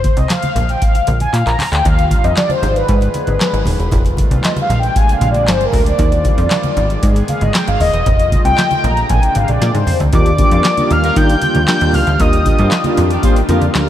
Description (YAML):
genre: early-eighties boogie funk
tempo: 116 BPM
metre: 4/4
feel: straight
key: Eb major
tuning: A4 = 441 Hz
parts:
  - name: mellow synth brass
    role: accompaniment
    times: 0.0-13.9 s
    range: Bb3 to Bb5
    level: -17 LUFS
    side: left 1 dB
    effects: chorus
  - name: plucky analog bass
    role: bass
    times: 0.0-13.9 s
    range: Eb1 to Eb3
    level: -16 LUFS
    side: equal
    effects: none
  - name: booming analog drum machine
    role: drums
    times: 0.0-13.9 s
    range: handclaps, hi-hat, kick drum, snare drum, toms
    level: -16 LUFS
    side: equal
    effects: none
  - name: congas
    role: percussion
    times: 0.0-13.9 s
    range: none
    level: -24 LUFS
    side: right 1 dB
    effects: none
  - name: chorused pulse-width pad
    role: sustained chords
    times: 1.8-13.9 s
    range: C3 to Ab4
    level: -24 LUFS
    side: left 1 dB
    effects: none
  - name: fat analog lead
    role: melody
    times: 10.1-13.0 s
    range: D6 to G6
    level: -17 LUFS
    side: equal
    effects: analog delay
  - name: mellow horn section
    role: second line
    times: 10.5-13.9 s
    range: Bb3 to Eb5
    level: -26 LUFS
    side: equal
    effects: none
room: moderate huge ambient reverb, RT60 4.7 s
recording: dreamy mix soaked in reverb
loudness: -11 LUFS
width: side -11 dB against mid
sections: 0.0-10.1 A section; 10.1-13.9 B section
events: analog polysynth solo 0.0-10.1; drum fill 1.3-1.9, 9.6-10.1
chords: 0.0 F5; 0.6 Bb; 1.9 Ebmaj9; 2.6 Abm; 3.9 F9; 4.7 Bb9; 6.0 Ebmaj9; 6.8 Abm; 8.1 F9; 8.8 Bb9; 10.1 Ebmaj9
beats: 0.30 0.82 1.34 | 1.85 2.37 2.89 3.40 | 3.92 4.44 4.96 5.47 | 5.99 6.51 7.03 7.54 | 8.06 8.58 9.10 9.61 | 10.13 10.65 11.16 11.68 | 12.20 12.71 13.23 13.75